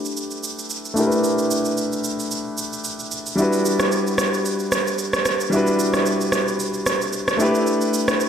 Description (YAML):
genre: amapiano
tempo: 112 BPM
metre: 4/4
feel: swing 55% on 16ths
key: E minor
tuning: A4 = 439 Hz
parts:
  - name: clear grand piano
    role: accompaniment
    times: 0.0-8.3 s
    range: G3 to B4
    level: -21 LUFS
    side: left 1 dB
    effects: low-pass filter
  - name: electronic shaker and rim click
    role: drums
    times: 0.1-8.3 s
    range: none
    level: -23 LUFS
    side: right 2 dB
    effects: none
room: wet lush hall reverb, RT60 1.9 s, digital ambience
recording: dreamy mix soaked in reverb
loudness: -19 LUFS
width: side -8 dB against mid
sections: 0.0-8.3 A section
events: filter sweep on grand piano 0.0-8.3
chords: 0.0 A9sus4; 3.4 Em7; 7.4 A9sus4